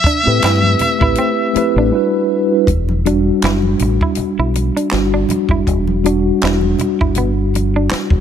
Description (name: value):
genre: R&B, neo-soul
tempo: 80 BPM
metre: 4/4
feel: swing 55% on 16ths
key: E minor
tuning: A4 = 440 Hz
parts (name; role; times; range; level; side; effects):
- trumpet with metal mute; melody; 0.0-1.9 s; E5; -17 LUFS; left 1 dB; none
- deep dub fingered electric bass; bass; 0.0-8.2 s; E1 to A2; -17 LUFS; equal; none
- compact cocktail drum kit; drums; 0.0-8.2 s; handclaps, hi-hat, kick drum, snare drum; -19 LUFS; equal; none
- semi-hollow electric guitar; second line; 0.1-8.0 s; B3 to E4; -24 LUFS; right 5 dB; none
- mellow tine electric piano; accompaniment; 0.2-8.2 s; G3 to B4; -16 LUFS; equal; medium stereo tremolo
- congas; percussion; 0.6-8.1 s; none; -27 LUFS; left 2 dB; none
room: small room ambience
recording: none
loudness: -13 LUFS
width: side -8 dB against mid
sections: 0.0-2.7 A section; 2.7-8.2 B section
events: silent gap 1.9-2.7; tine electric piano solo 2.7-8.2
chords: 0.0 Am9; 1.9 Em9